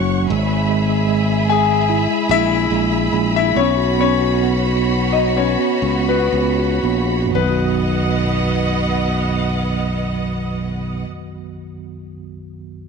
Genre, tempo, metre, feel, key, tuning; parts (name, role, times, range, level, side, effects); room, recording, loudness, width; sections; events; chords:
pop ballad; 57-76 BPM; 4/4; straight; B major; A4 = 440 Hz
clear concert grand piano; melody; 0.0-11.0 s; B3 to G#5; -20 LUFS; left 11 dB
mellow tine electric piano; accompaniment; 0.0-12.9 s; B1 to F#4; -21 LUFS; right 2 dB; slow stereo tremolo
clear studio string section; sustained chords; 0.0-11.0 s; B2 to C#6; -23 LUFS; right 2 dB
modern bright fingered electric bass; bass; 0.0-11.0 s; F#1 to C#2; -20 LUFS; right 2 dB
light reverb, studio reverb; -15 LUFS; side -5 dB against mid
0.0-7.4 A section; 7.4-11.5 B section
slowing down 0.3-7.4
0.3 E/G#; 3.6 Bsus2; 7.4 B